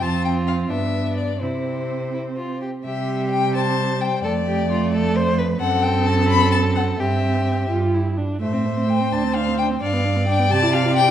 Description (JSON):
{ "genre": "quick classical-period movement for string quartet", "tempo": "86 BPM (dotted quarters)", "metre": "6/8", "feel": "rubato", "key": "C major", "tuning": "A4 = 440 Hz", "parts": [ { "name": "rich violin", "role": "melody", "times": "0.0-11.1 s", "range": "C5 to B5", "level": "-24 LUFS", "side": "left 7 dB", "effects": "none" }, { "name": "rich violin", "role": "second line", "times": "0.0-11.1 s", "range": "D4 to D5", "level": "-26 LUFS", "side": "left 1 dB", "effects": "none" }, { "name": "warm viola", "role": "accompaniment", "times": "0.0-11.1 s", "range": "G3 to G4", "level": "-25 LUFS", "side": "right 2 dB", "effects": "none" }, { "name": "rich cello", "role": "bass", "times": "0.0-11.1 s", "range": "D2 to C3", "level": "-22 LUFS", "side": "right 3 dB", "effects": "none" } ], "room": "moderate recital hall reverb, RT60 1.6 s", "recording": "dark, warm production", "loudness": "-18 LUFS", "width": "side -10 dB against mid", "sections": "0.0-2.9 A section; 2.9-11.1 B section", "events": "none", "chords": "0.0 F5; 0.7 G; 1.4 C; 4.2 Dm/F; 5.6 F#dim; 7.0 C/G; 7.7 G5; 8.4 Am; 9.1 Dm7; 9.8 G7; 10.5 C" }